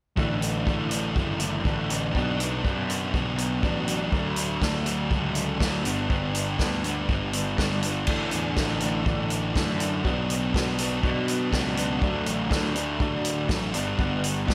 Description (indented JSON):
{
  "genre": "indie rock",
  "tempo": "122 BPM",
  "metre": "4/4",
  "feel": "straight",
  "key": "unclear",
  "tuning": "A4 = 444 Hz",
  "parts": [
    { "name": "overdriven electric guitar", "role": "riff", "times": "0.2-14.5 s", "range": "G2 to D4", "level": "-34 LUFS", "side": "equal", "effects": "ensemble chorus, analog delay" },
    { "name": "thick fuzz guitar", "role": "riff", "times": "0.2-14.5 s", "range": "G2 to D4", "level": "-31 LUFS", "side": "equal", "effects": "distortion" },
    { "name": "fuzz picked electric bass", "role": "bass", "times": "0.2-14.5 s", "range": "F#1 to B2", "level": "-33 LUFS", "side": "equal", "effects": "overdrive" },
    { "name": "vintage drum kit", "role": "drums", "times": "0.2-14.5 s", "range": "crash cymbal, hi-hat, kick drum, snare drum", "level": "-31 LUFS", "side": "equal", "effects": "none" }
  ],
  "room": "light reverb, studio ambience",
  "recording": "none",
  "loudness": "-26 LUFS",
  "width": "mono",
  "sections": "0.2-8.1 A section; 8.1-14.5 B section",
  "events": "none",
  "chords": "0.2 Asus4; 2.2 Bm; 4.1 D; 5.9 G; 8.1 Asus4; 10.1 Bm; 12.0 D; 13.7 G"
}